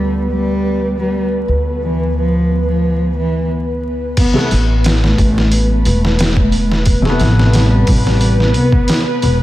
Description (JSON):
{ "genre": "trip hop", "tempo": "89 BPM", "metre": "4/4", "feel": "straight", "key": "A minor", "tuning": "A4 = 435 Hz", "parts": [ { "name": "dark cello", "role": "melody", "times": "0.0-8.9 s", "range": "E3 to B3", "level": "-19 LUFS", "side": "equal", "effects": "vintage 12-bit sampler grit" }, { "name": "felt-muted upright piano", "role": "accompaniment", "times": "0.0-9.4 s", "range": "C3 to B3", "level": "-21 LUFS", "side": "left 1 dB", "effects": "tremolo, tape echo" }, { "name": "string machine, cellos", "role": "sustained chords", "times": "0.0-9.4 s", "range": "B4", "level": "-21 LUFS", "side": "equal", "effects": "ensemble chorus" }, { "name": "upright bass", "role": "bass", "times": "0.0-9.4 s", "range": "E1 to D2", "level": "-15 LUFS", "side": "equal", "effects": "none" }, { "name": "trip hop sampler-style drum kit", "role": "drums", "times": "4.2-9.4 s", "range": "crash cymbal, hi-hat, kick drum, snare drum", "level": "-16 LUFS", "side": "equal", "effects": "overdrive" } ], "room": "small room ambience", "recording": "vinyl crackle", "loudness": "-12 LUFS", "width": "side -15 dB against mid", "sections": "0.0-4.2 A section; 4.2-9.4 B section", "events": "none", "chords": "0.0 D5; 4.2 Amadd9" }